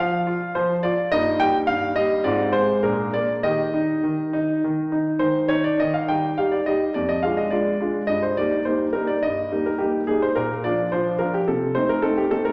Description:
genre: classical-period piano sonatina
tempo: 106 BPM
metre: 4/4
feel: rubato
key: Eb major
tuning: A4 = 440 Hz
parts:
  - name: clear concert grand piano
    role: solo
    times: 0.0-12.5 s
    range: F2 to G5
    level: -22 LUFS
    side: equal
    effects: none
room: wet recital hall reverb, RT60 1.7 s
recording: none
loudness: -22 LUFS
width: mono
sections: 0.0-5.8 A section; 5.8-12.5 A section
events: none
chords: 0.0 Dm/F; 1.1 Eb/G; 2.2 Fm/Ab; 2.8 Bb7; 3.4 Eb; 7.0 Ddim/F; 8.1 Eb/G; 10.4 Bb; 11.5 Adim/C

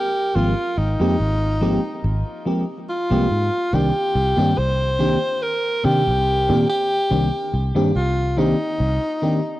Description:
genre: vaporwave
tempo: 71 BPM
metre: 4/4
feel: swing 54% on 16ths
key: C minor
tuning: A4 = 442 Hz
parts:
  - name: clear alto saxophone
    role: melody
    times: 0.0-9.6 s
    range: Eb4 to C5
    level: -22 LUFS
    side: equal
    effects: tape echo
  - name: mellow FM electric piano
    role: accompaniment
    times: 0.3-9.4 s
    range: Eb3 to G4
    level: -22 LUFS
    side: equal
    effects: analog chorus
  - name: fingered electric bass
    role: bass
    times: 0.4-9.0 s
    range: Ab1 to C3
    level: -21 LUFS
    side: equal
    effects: none
room: light reverb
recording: cassette tape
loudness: -18 LUFS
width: side -16 dB against mid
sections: 0.0-9.6 A section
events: none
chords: 0.0 Abmaj13; 3.7 Cm9

